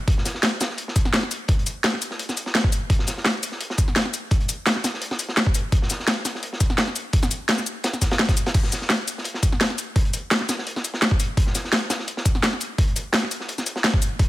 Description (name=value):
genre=drum and bass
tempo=170 BPM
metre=4/4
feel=swing 54% on 16ths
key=none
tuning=none
part: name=crunchy breakbeat drum kit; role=drums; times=0.1-14.3 s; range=hi-hat, snare drum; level=-29 LUFS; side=equal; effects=high-pass filter on hats, studio reverb, high-pass filter on snare, high-pass filter on room
part: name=drum and bass drum kit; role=drums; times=0.1-14.3 s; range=cabasa, crash cymbal, hi-hat, snare drum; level=-23 LUFS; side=equal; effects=overdrive, studio reverb
part: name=electronic kick drum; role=drums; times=0.1-14.3 s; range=none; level=-20 LUFS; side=equal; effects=overdrive, studio reverb
room=studio reverb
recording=none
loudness=-20 LUFS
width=side -16 dB against mid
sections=0.0-14.3 A section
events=none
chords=none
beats=| 0.08 0.43 0.78 1.14 | 1.49 1.84 2.19 2.55 | 2.90 3.25 3.61 3.96 | 4.31 4.67 5.02 5.37 | 5.72 6.08 6.43 6.78 | 7.14 7.49 7.84 8.20 | 8.55 8.90 9.25 9.61 | 9.96 10.31 10.66 11.02 | 11.37 11.72 12.08 12.43 | 12.78 13.14 13.49 13.84 | 14.20